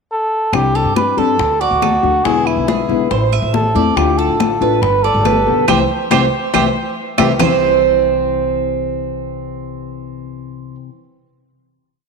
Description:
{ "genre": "latin, Cuban son and guajira", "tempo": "140 BPM", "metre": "4/4", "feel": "straight", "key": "C major", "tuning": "A4 = 440 Hz", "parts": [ { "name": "trumpet with cup mute", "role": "melody", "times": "0.1-7.3 s", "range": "E4 to B4", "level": "-17 LUFS", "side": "equal", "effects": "none" }, { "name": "nylon-string guitar", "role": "accompaniment", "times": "0.5-10.9 s", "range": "B2 to G4", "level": "-20 LUFS", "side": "left 10 dB", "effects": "none" }, { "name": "upright bass", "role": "bass", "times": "0.5-10.7 s", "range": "G1 to G2", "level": "-22 LUFS", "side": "equal", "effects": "none" }, { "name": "bongos", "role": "percussion", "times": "0.5-7.5 s", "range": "none", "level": "-24 LUFS", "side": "left 12 dB", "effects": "none" }, { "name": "claves", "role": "percussion", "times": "0.5-7.5 s", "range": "none", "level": "-25 LUFS", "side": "right 13 dB", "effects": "none" }, { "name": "congas", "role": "percussion", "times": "0.5-7.5 s", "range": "none", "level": "-22 LUFS", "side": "left 2 dB", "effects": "none" }, { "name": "Cuban tres", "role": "arpeggios", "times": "0.8-10.8 s", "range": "C4 to E5", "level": "-18 LUFS", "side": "right 10 dB", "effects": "none" } ], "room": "wet echo chamber reverb, RT60 2.1 s", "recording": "1960s-style stereo with parts hard left and right", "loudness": "-12 LUFS", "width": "side -4 dB against mid", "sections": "0.0-0.5 pickup bar; 0.5-7.4 A section; 7.4-10.8 final chord", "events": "band accent 5.7-7.4; drum fill 7.2", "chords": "0.0 N.C.; 0.5 Csus2; 1.4 D; 2.3 E7; 3.1 Am; 4.0 Dm; 4.8 G; 5.7 C" }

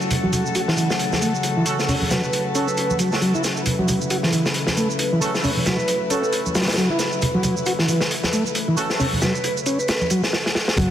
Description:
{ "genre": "breakbeat, breaks", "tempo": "135 BPM", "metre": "4/4", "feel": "swing 58% on 16ths", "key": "F# minor", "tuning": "A4 = 440 Hz", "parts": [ { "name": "warm studio string section", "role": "sustained chords", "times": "0.0-10.9 s", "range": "C#3 to B4", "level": "-26 LUFS", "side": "left 2 dB", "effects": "vintage 12-bit sampler grit, sidechain pumping, low-pass filter" }, { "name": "shaker", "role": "drums", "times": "0.0-10.9 s", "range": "none", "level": "-31 LUFS", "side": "right 4 dB", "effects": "none" }, { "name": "crunchy breakbeat drum kit", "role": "drums", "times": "0.1-10.9 s", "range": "hi-hat, kick drum, snare drum", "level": "-24 LUFS", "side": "equal", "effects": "high-pass filter on kick, high-pass filter on hats, high-pass filter on snare, high-pass filter on room" }, { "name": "congas", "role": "percussion", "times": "0.1-10.1 s", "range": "none", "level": "-27 LUFS", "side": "right 1 dB", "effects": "none" }, { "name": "combo organ", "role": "riff", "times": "0.2-10.9 s", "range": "E3 to F#4", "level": "-23 LUFS", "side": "equal", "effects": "overdrive, low-pass filter, ping-pong delay" }, { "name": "warm horn section", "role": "stabs", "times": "1.7-8.9 s", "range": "A3 to A4", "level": "-29 LUFS", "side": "right 2 dB", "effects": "vintage 12-bit sampler grit, ping-pong delay" }, { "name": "vibraphone with medium hard mallets", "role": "melody", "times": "2.1-2.9, 5.7-6.3, 9.2-10.0 s", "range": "A4 to B4", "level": "-28 LUFS", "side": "right 2 dB", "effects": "AM radio sound, ping-pong delay" }, { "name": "fingered electric bass", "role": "bass", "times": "10.8-10.9 s", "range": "F#1", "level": "-22 LUFS", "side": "equal", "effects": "tube saturation" } ], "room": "moderate lush hall reverb, RT60 2.1 s", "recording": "dense, heavily limited modern master, vinyl crackle", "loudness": "-18 LUFS", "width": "side -10 dB against mid", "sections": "0.0-10.8 A section", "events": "filter sweep on string section 0.0-10.8; drum fill 10.3-10.8", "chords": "0.0 F#m" }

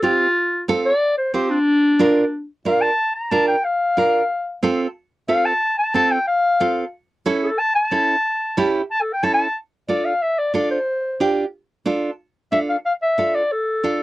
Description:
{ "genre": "latin", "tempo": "182 BPM", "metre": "4/4", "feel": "straight", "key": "D minor", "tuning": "A4 = 440 Hz", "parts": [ { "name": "warm clarinet", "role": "melody", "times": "0.0-14.0 s", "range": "D4 to Bb5", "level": "-18 LUFS", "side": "left 1 dB", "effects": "none" }, { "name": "nylon-string guitar", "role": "accompaniment", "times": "0.0-14.0 s", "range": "C4 to C5", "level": "-19 LUFS", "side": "right 3 dB", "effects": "none" } ], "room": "light reverb", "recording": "dry, close 1970s-style studio recording", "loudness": "-17 LUFS", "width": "side -17 dB against mid", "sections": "0.0-9.6 A section; 9.6-14.0 B section", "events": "clarinet solo 0.0-9.6", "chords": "0.0 Fadd9; 1.7 Bb; 4.3 F; 6.9 A; 9.6 Dm" }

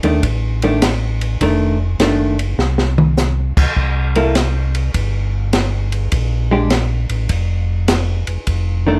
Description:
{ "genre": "soul jazz organ trio", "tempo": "102 BPM", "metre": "4/4", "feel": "swing 67% on 8ths", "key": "F mixolydian", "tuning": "A4 = 439 Hz", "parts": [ { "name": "vintage hollow-body jazz guitar", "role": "accompaniment", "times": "0.0-9.0 s", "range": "Eb3 to A4", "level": "-19 LUFS", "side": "equal", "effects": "none" }, { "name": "mellow tonewheel organ", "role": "bass", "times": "0.0-9.0 s", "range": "F1 to Eb2", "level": "-20 LUFS", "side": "equal", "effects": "chorus vibrato, slow rotary speaker" }, { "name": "compact cocktail drum kit", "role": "drums", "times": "0.0-8.7 s", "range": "crash cymbal, hi-hat, kick drum, ride cymbal, snare drum, toms", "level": "-22 LUFS", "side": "equal", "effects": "none" } ], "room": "light reverb", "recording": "none", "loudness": "-17 LUFS", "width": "mono", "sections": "0.0-9.0 A section", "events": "drum fill 2.6-3.2", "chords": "0.0 F6; 3.8 C5; 6.1 Bb5; 8.5 F6" }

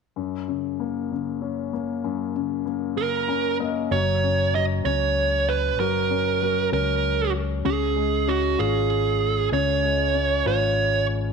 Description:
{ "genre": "six-eight pop ballad", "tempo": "64 BPM (dotted quarters)", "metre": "6/8", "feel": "straight", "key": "F# major", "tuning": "A4 = 445 Hz", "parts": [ { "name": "clear grand piano", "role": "accompaniment", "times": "0.2-11.3 s", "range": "F#2 to A#5", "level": "-26 LUFS", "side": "left 12 dB", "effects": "none" }, { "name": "dark smooth lead guitar", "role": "melody", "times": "3.0-11.1 s", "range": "F#4 to D#5", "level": "-23 LUFS", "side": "right 8 dB", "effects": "overdrive" }, { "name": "fingered electric bass", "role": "bass", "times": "3.9-11.3 s", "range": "F#1 to C#2", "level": "-26 LUFS", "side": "left 1 dB", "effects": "none" } ], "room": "moderate echo chamber reverb, RT60 1.4 s, studio ambience", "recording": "1960s-style stereo with parts hard left and right", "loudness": "-21 LUFS", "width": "side -5 dB against mid", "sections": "0.2-3.9 A section; 3.9-11.3 B section", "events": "grand piano fill 3.0-3.9", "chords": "0.2 F#; 7.7 C#" }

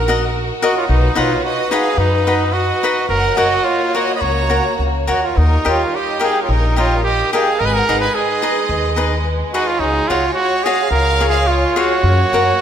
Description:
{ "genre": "mexican folk, mariachi", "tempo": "108 BPM", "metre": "4/4", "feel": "rubato", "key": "F# major", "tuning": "A4 = 440 Hz", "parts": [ { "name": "bright trumpet", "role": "melody", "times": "0.0-12.6 s", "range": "D#4 to D#5", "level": "-18 LUFS", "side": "right 2 dB", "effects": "none" }, { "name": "clear studio violin section", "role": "second line", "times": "0.0-12.6 s", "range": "G#4 to B5", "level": "-23 LUFS", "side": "right 2 dB", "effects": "none" }, { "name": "rich studio violin section", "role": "sustained chords", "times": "0.0-12.6 s", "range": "G3 to C#5", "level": "-24 LUFS", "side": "left 1 dB", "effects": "none" }, { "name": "upright bass", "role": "bass", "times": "0.0-12.5 s", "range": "F#1 to F#2", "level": "-18 LUFS", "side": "equal", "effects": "none" }, { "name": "cavaquinho", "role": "accompaniment", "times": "0.1-12.5 s", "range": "D#4 to G5", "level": "-20 LUFS", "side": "left 2 dB", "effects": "none" } ], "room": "moderate concert hall reverb, RT60 1.9 s", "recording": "none", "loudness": "-14 LUFS", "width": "side -9 dB against mid", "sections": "0.0-12.6 A section", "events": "none", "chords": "0.0 D#m/A#; 0.9 B; 3.1 F#; 5.3 D#; 7.6 G#m; 9.8 C#sus4; 10.9 C#; 12.0 F#" }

